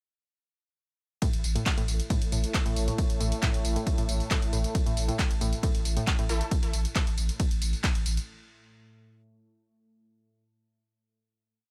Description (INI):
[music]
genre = driving peak-time techno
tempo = 136 BPM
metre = 4/4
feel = straight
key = unclear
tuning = A4 = 445 Hz
[part]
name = warbly dusty pluck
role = riff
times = 1.2-6.2 s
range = A2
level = -37 LUFS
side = equal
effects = chorus, sidechain pumping, tape echo
[part]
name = deep dark ambient pad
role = drone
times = 1.9-6.6 s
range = A2 to A3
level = -40 LUFS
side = equal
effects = chorus, built-in reverb, sidechain pumping
[part]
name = electronic kick drum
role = drums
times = 1.2-7.9 s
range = none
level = -29 LUFS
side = equal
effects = none
[part]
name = punchy analog drum machine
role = drums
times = 1.2-8.3 s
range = handclaps, hi-hat, ride cymbal, tambourine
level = -36 LUFS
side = equal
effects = sidechain pumping on hats, sidechain pumping on cymbals, sidechain pumping on perc
[part]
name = saturated sub bass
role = bass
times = 1.3-8.2 s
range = A1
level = -32 LUFS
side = equal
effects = overdrive, sidechain pumping, low-pass filter
[part]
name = rave stab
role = stabs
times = 6.3-6.5 s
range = A3 to A4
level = -39 LUFS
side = equal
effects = chorus, built-in reverb, sidechain pumping, digital delay
[sound]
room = digital ambience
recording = none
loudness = -28 LUFS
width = mono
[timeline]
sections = 1.2-8.3 drop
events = drop 1.2-8.3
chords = 1.2 A5